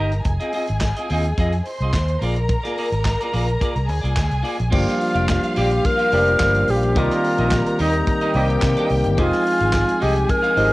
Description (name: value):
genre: disco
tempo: 108 BPM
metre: 4/4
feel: straight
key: F dorian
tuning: A4 = 443 Hz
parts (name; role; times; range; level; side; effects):
- warm studio violin section; second line; 0.0-10.7 s; F4 to C6; -28 LUFS; left 1 dB; cassette tape
- clean electric guitar; accompaniment; 0.0-10.7 s; Bb3 to F5; -27 LUFS; equal; cassette tape
- fingered electric bass; bass; 0.0-10.7 s; F1 to C3; -21 LUFS; equal; none
- warm soul drum kit; drums; 0.1-10.7 s; crash cymbal, handclaps, hi-hat, kick drum, snare drum; -25 LUFS; equal; none
- bright alto flute; melody; 4.7-10.7 s; Eb4 to Bb4; -20 LUFS; equal; none
- overdriven tine electric piano; accompaniment; 4.7-10.7 s; Eb3 to Ab4; -22 LUFS; left 1 dB; auto-pan, cassette tape
room: light reverb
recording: home recording on cassette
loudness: -17 LUFS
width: side -19 dB against mid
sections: 0.0-4.7 A section; 4.7-10.7 B section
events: none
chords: 0.3 Fm7; 2.2 Bb7; 4.7 Gm7; 7.0 Cm7; 9.2 Fm7